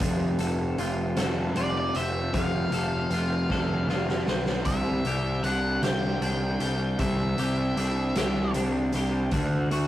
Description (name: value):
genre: quiet-loud alternative rock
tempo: 52 BPM (dotted quarters)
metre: 6/8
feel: straight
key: unclear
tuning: A4 = 440 Hz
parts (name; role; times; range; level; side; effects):
- twelve-string electric guitar; arpeggios; 0.0-9.9 s; C3 to A4; -32 LUFS; left 1 dB; none
- fuzz picked electric bass; bass; 0.0-9.9 s; F1 to D2; -27 LUFS; equal; overdrive
- raw garage drum kit; drums; 0.0-9.9 s; hi-hat, kick drum, snare drum; -31 LUFS; equal; none
- octave-fuzz lead guitar; melody; 1.6-8.5 s; D5 to G5; -32 LUFS; left 1 dB; distortion
room: moderate studio reverb, RT60 0.6 s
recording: rough rehearsal-room recording, warm saturation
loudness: -24 LUFS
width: side -13 dB against mid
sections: 0.0-9.9 A section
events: drum fill 3.5-4.7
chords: 0.0 F; 4.7 Cadd9; 9.3 D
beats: | 0.01 1.18 | 2.34 3.51 | 4.67 5.84 | 7.00 8.17 | 9.33